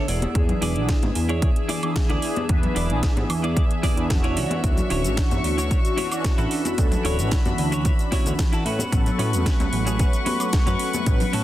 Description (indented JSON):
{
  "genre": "nu-disco, nu disco",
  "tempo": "112 BPM",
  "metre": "4/4",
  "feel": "straight",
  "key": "A major",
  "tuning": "A4 = 440 Hz",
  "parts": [
    { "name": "mellow synth brass", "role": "accompaniment", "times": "0.0-11.4 s", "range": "E3 to B4", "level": "-27 LUFS", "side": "equal", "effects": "chorus, phaser, sidechain pumping, analog delay" },
    { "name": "warm studio string section", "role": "sustained chords", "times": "0.0-11.4 s", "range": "F#4 to C#6", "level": "-32 LUFS", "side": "left 3 dB", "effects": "sidechain pumping" },
    { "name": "clean electric guitar", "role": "riff", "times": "0.0-11.4 s", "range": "C#4 to F#5", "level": "-31 LUFS", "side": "right 1 dB", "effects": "wide subtle chorus, low-pass filter, analog delay" },
    { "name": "fat analog bass", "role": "bass", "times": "0.1-11.4 s", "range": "D1 to A2", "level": "-25 LUFS", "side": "equal", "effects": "none" },
    { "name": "house drum kit", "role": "drums", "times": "0.1-11.4 s", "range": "cabasa, hi-hat, snare drum, woodblock", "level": "-31 LUFS", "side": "right 1 dB", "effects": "none" },
    { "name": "congas", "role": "percussion", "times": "0.2-11.3 s", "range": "none", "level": "-31 LUFS", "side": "left 3 dB", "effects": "none" },
    { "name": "electronic kick drum", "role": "drums", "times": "0.4-11.2 s", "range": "none", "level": "-21 LUFS", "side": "equal", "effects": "none" }
  ],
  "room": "light reverb, digital ambience",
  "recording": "dense, heavily limited modern master",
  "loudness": "-19 LUFS",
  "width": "side -14 dB against mid",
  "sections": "0.0-11.4 A section",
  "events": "clean electric guitar fill 0.0-0.4",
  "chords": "0.1 E7; 4.4 Dmaj9; 8.7 A69",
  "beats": "| 0.35 0.89 1.43 1.96 | 2.50 3.03 3.57 4.10 | 4.64 5.17 5.71 6.25 | 6.78 7.32 7.85 8.39 | 8.93 9.46 10.00 10.53 | 11.07"
}